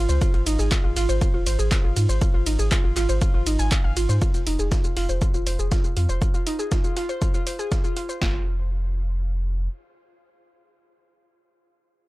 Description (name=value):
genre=melodic techno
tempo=120 BPM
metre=4/4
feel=straight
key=F minor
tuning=A4 = 439 Hz
part: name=round analog bass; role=bass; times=0.0-9.7 s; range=Eb1 to Ab2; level=-23 LUFS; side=equal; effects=sidechain pumping
part: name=warbly dusty pluck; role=arpeggios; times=0.1-8.4 s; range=Eb4 to Ab5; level=-28 LUFS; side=right 1 dB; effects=chorus, sidechain pumping, tape echo
part: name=punchy analog drum machine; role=drums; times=0.1-8.2 s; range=handclaps, hi-hat, ride cymbal, shaker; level=-30 LUFS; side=right 1 dB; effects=none
part: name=dusty soul sampler-style drum kit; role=drums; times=0.2-8.1 s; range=hi-hat, snare drum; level=-38 LUFS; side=left 1 dB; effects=none
part: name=punchy analog drum machine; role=drums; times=0.2-8.3 s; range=kick drum, snare drum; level=-22 LUFS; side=equal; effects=none
room=little or no reverb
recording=dry, gritty hardware recording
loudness=-20 LUFS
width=side -19 dB against mid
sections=0.0-4.2 A section; 4.2-8.2 B section; 8.2-12.1 C section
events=drop 0.0-4.2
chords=none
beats=| 0.21 0.71 1.22 1.72 | 2.21 2.71 3.21 3.71 | 4.21 4.71 5.21 5.71 | 6.21 6.71 7.21 7.71 | 8.21 8.71 9.21